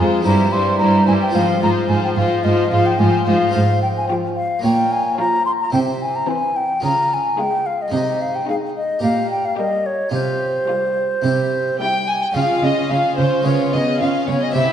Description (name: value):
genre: classical, baroque-style concerto movement with solo episodes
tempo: 109 BPM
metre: 4/4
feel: straight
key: unclear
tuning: A4 = 439 Hz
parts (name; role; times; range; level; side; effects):
- bright baroque flute; melody; 0.0-14.7 s; C5 to C6; -20 LUFS; left 1 dB; none
- rich chamber violin section; melody; 0.0-14.7 s; F4 to Db5; -29 LUFS; left 5 dB; none
- rich chamber violin section; second line; 0.0-14.7 s; C4 to Ab5; -24 LUFS; left 1 dB; none
- dark chamber viola section; accompaniment; 0.0-14.7 s; E3 to F4; -23 LUFS; equal; none
- harpsichord; accompaniment; 0.0-14.7 s; F2 to Db5; -25 LUFS; right 1 dB; none
- rich chamber cello section; bass; 0.0-14.6 s; G2 to Db3; -21 LUFS; right 2 dB; none
room: wet scoring stage reverb, RT60 1.7 s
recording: dark, warm production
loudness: -16 LUFS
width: side -9 dB against mid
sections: 0.0-12.4 A section; 12.4-14.7 A section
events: none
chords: 0.3 C/G; 1.4 Fm/Ab; 4.6 Bbm; 5.7 C; 6.8 Db; 7.9 Ab/C; 9.0 Bbm6; 10.1 Csus4; 11.2 C; 12.4 Db; 13.5 Db7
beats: 0.26 0.81 | 1.35 1.90 2.45 3.00 | 3.54 4.09 4.64 5.19 | 5.73 6.28 6.83 7.38 | 7.92 8.47 9.02 9.57 | 10.13 10.69 11.24 11.80 | 12.35 12.91 13.46 14.01 | 14.56